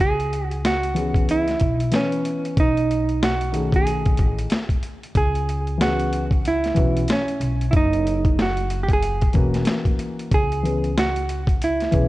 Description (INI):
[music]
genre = hip hop, jazz-hop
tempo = 93 BPM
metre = 4/4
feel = swing 61% on 16ths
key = C# minor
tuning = A4 = 441 Hz
[part]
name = hollow-body jazz guitar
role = melody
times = 0.0-12.1 s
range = C#4 to G#4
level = -23 LUFS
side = right 2 dB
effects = analog delay
[part]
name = upright bass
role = bass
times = 0.0-12.1 s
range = E1 to C#2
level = -25 LUFS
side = equal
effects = none
[part]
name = boom bap sampler-style drum kit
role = drums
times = 0.0-12.1 s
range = hi-hat, kick drum, snare drum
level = -22 LUFS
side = equal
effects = vintage 12-bit sampler grit
[part]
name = dark grand piano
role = accompaniment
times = 0.9-12.1 s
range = D#3 to B4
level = -26 LUFS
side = left 2 dB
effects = none
[sound]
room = light reverb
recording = worn, warbling old tape, cassette tape, warbly pitch drift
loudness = -18 LUFS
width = side -17 dB against mid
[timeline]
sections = 0.0-12.1 A section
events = none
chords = 0.0 C#m7; 2.6 B13; 5.2 C#m7; 7.7 F#7; 10.3 C#m7